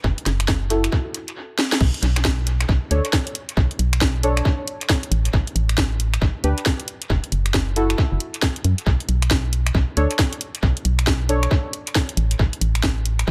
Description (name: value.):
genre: UK garage, two-step garage.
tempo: 136 BPM.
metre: 4/4.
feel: swing 62% on 16ths.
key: B minor.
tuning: A4 = 439 Hz.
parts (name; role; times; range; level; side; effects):
organ-like FM bass; bass; 0.0-13.3 s; F#1 to F#2; -23 LUFS; equal; none.
electronic kick drum; drums; 0.0-13.3 s; none; -24 LUFS; equal; none.
garage drum kit; drums; 0.2-13.3 s; crash cymbal, finger snaps, hi-hat, snare drum; -26 LUFS; equal; overdrive, dub echo.
deep mellow chord stab; stabs; 0.7-12.2 s; D4 to C#5; -28 LUFS; equal; chorus, analog delay.
room: light reverb.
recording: echo-heavy mix.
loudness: -21 LUFS.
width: mono.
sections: 0.0-1.8 A section; 1.8-13.3 B section.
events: drum fill 1.6; drop 1.8-13.3.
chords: 0.0 F#m7; 1.8 Bm9; 5.1 Asus4; 7.1 F#m7; 8.9 Bm9; 12.2 N.C..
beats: | 0.04 0.48 0.92 1.36 | 1.81 2.25 2.69 3.13 | 3.57 4.01 4.45 4.89 | 5.33 5.78 6.22 6.66 | 7.10 7.54 7.98 8.42 | 8.87 9.31 9.75 10.19 | 10.63 11.07 11.51 11.95 | 12.39 12.84 13.28.